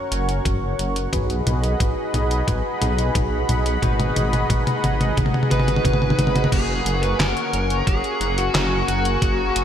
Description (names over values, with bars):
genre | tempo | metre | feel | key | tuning
synthwave | 89 BPM | 4/4 | straight | unclear | A4 = 441 Hz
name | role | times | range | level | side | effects
warm analog pad | sustained chords | 0.0-9.6 s | G#4 to C#6 | -26 LUFS | left 1 dB | chorus, sidechain pumping
chorused polysynth | stabs | 0.0-9.6 s | A#3 to C#5 | -28 LUFS | equal | ping-pong delay
dark detuned saw bass | bass | 0.1-9.6 s | F#1 to B1 | -24 LUFS | equal | sidechain pumping
detuned 8-bit digital drum machine | drums | 0.1-9.6 s | crash cymbal, handclaps, hi-hat, snare drum, toms | -24 LUFS | equal | gated reverb
electronic kick drum | drums | 0.5-9.4 s | none | -23 LUFS | equal | none
dark smooth lead guitar | melody | 5.5-9.6 s | F#4 to B4 | -24 LUFS | right 1 dB | overdrive
room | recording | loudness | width
moderate lush hall reverb, RT60 2.8 s | bright 1980s-style digital production | -18 LUFS | side -9 dB against mid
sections
0.0-6.5 A section; 6.5-9.6 B section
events
drum fill 0.0-6.5; filter sweep on analog polysynth 0.0-6.5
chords
0.0 F#; 1.1 B6; 3.8 G#m7; 6.5 F#add9